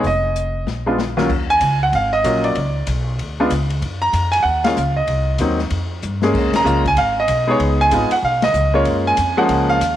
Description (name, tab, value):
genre	jazz piano trio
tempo	190 BPM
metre	4/4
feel	swing 63% on 8ths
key	unclear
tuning	A4 = 442 Hz
part	clear grand piano	melody	0.0-10.0 s	Eb2 to Bb5	-16 LUFS	right 1 dB	none
part	upright bass	bass	0.0-10.0 s	F1 to G2	-21 LUFS	equal	none
part	open jazz drum kit	drums	0.0-9.9 s	crash cymbal, hi-hat, kick drum, ride cymbal, snare drum	-27 LUFS	left 4 dB	none
room	light reverb, small room ambience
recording	1960s-style stereo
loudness	-15 LUFS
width	side -12 dB against mid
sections	0.0-1.3 A section; 1.3-10.0 B section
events	drum fill 0.7-1.3, 6.0-6.3; band accent 4.6, 6.5, 8.4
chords	0.0 Ebsus2/F; 0.7 Bb5; 1.3 Ebm7; 2.6 Db7(no3); 3.8 Gbmaj7; 5.1 Cm7b5; 5.7 Fmadd9; 6.3 Db9; 8.9 Gbmaj9